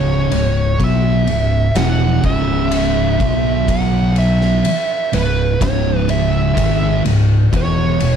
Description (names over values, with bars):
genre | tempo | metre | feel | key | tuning
stoner and doom metal | 62 BPM | 4/4 | straight | C# minor | A4 = 438 Hz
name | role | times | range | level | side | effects
fuzz lead guitar | melody | 0.0-8.2 s | B4 to F#5 | -21 LUFS | right 2 dB | wah, distortion, slapback echo
thick fuzz guitar | riff | 0.0-8.2 s | C#2 to B3 | -20 LUFS | left 10 dB | distortion
thick fuzz guitar | riff | 0.0-8.2 s | C#2 to B3 | -18 LUFS | right 8 dB | distortion
growling fingered electric bass | bass | 0.0-8.2 s | C#1 to B1 | -20 LUFS | equal | overdrive
oversized low-tuned drum kit | drums | 0.3-8.2 s | kick drum, ride cymbal, snare drum | -22 LUFS | equal | none
room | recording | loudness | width
light reverb, small room ambience | dark, warm production | -13 LUFS | side -8 dB against mid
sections
0.0-8.2 A section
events
none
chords
0.0 C#m; 3.2 B5; 4.6 C#m; 7.5 E5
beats
0.80 1.76 2.72 | 3.68 4.64 5.61 6.57 | 7.53